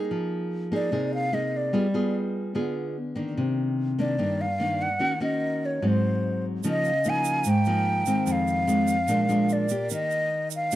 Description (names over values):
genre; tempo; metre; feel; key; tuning
bossa nova; 147 BPM; 4/4; straight; unclear; A4 = 441 Hz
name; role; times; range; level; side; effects
nylon-string guitar; accompaniment; 0.0-10.8 s; F2 to Ab4; -25 LUFS; equal; none
breathy mellow silver concert flute; melody; 0.8-10.8 s; C5 to Ab5; -26 LUFS; equal; none
egg shaker; percussion; 6.6-10.8 s; none; -37 LUFS; right 16 dB; none
vibraphone with medium mallets; accompaniment; 6.8-9.9 s; Bb4 to Bb5; -38 LUFS; right 1 dB; none
room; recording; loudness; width
little or no reverb; dry, close 1970s-style studio recording; -23 LUFS; side -14 dB against mid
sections
0.0-6.6 A section; 6.6-10.8 B section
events
none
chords
0.1 Fm7; 1.7 G7b9; 3.4 Cm9; 5.0 Ebm7; 5.8 Ab7; 6.6 Db69; 8.3 Fm7; 9.1 Bb7; 9.9 Eb